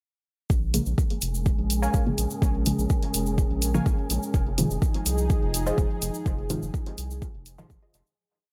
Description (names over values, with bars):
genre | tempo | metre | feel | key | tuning
dub techno | 125 BPM | 4/4 | straight | Bb minor | A4 = 440 Hz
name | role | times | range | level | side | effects
dark analog pad | sustained chords | 1.0-8.1 s | F3 to Bb4 | -35 LUFS | equal | chorus, sidechain pumping
round analog bass | bass | 0.5-8.0 s | F1 to C2 | -31 LUFS | equal | sidechain pumping
electronic kick drum | drums | 0.5-7.8 s | none | -27 LUFS | equal | none
tube shaker | percussion | 0.5-8.2 s | none | -36 LUFS | equal | none
wind-like tuned noise texture | texture | 1.2-8.2 s | Ab4 | -43 LUFS | equal | built-in reverb, sidechain pumping
filtered dub chord stab | stabs | 0.7-7.7 s | Ab2 to Bb3 | -32 LUFS | equal | chorus, phaser, vintage 12-bit sampler grit, sidechain pumping, dub echo
electronic hi-hat | drums | 0.7-8.0 s | none | -34 LUFS | equal | none
filtered dub chord stab | riff | 1.8-7.9 s | F4 to Ab5 | -38 LUFS | equal | phaser, sidechain pumping, dub echo
room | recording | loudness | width
digital ambience | none | -26 LUFS | mono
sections
0.5-8.2 groove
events
filter sweep on synth stab 0.5-8.2; fade-out 5.6-8.2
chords
0.5 Bbm7; 4.3 Fm7